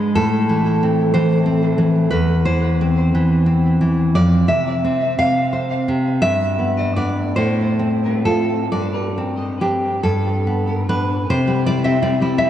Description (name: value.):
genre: romantic piece for solo classical guitar.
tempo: 42-63 BPM (dotted quarters).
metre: 6/8.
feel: rubato.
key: C major.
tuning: A4 = 440 Hz.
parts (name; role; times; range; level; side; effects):
nylon-string guitar; solo; 0.0-12.5 s; E2 to F5; -15 LUFS; equal; diffuse ambient delay.
room: wet lush hall reverb, RT60 2.7 s.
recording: dreamy mix soaked in reverb, cassette tape.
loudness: -15 LUFS.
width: side -11 dB against mid.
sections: 0.0-11.3 A section; 11.3-12.5 B section.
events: none.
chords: 0.2 Am; 2.1 C/E; 4.2 Dm9/F; 6.2 G; 7.4 F/A; 8.7 Gsus4; 10.0 G; 11.3 C.